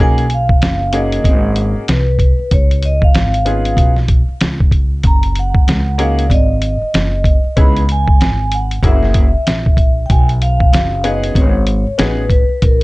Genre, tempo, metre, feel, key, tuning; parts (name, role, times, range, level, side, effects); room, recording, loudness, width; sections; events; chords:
hip hop, jazz-hop; 95 BPM; 4/4; swing 60% on 16ths; A4 = 439 Hz
vibraphone with medium mallets; melody; 0.0-12.8 s; A#4 to B5; -20 LUFS; equal; plate reverb, tape echo
bright upright piano; accompaniment; 0.0-12.2 s; A#3 to G#4; -20 LUFS; left 2 dB; plate reverb
upright bass; bass; 0.0-12.8 s; F#1 to C#2; -16 LUFS; equal
lo-fi sampler-style drum kit; drums; 0.2-12.8 s; hi-hat, kick drum, snare drum; -12 LUFS; equal
little or no reverb; dark, warm production, nothing above 10.4 kHz; -11 LUFS; side -21 dB against mid
0.0-12.8 A section
0.0 Bmaj13; 2.5 C#7; 5.0 F#5; 7.6 C#m7; 8.8 F#9; 10.1 B6